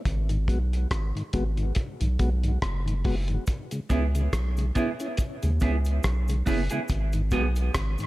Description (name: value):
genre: dub reggae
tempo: 70 BPM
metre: 4/4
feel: swing 56% on 16ths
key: C# minor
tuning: A4 = 440 Hz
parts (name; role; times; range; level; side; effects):
- soft dub sub bass; bass; 0.1-8.0 s; F#1 to D#2; -25 LUFS; equal; none
- cloth-damped thuddy drum kit; drums; 0.1-8.1 s; hi-hat, kick drum, rim click; -29 LUFS; equal; none
- mellow tonewheel organ; accompaniment; 0.3-8.1 s; G#2 to F#4; -33 LUFS; left 2 dB; slow rotary speaker, dub echo
- cabasa; percussion; 3.5-8.1 s; none; -49 LUFS; left 1 dB; none
- semi-hollow electric guitar; accompaniment; 3.9-7.5 s; B3 to G#4; -31 LUFS; right 4 dB; dub echo
room: small room reverb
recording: echo-heavy mix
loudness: -24 LUFS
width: side -18 dB against mid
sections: 0.0-8.1 A section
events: break 0.0-3.5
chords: 0.1 G#m7; 3.5 C#m7; 6.9 G#m7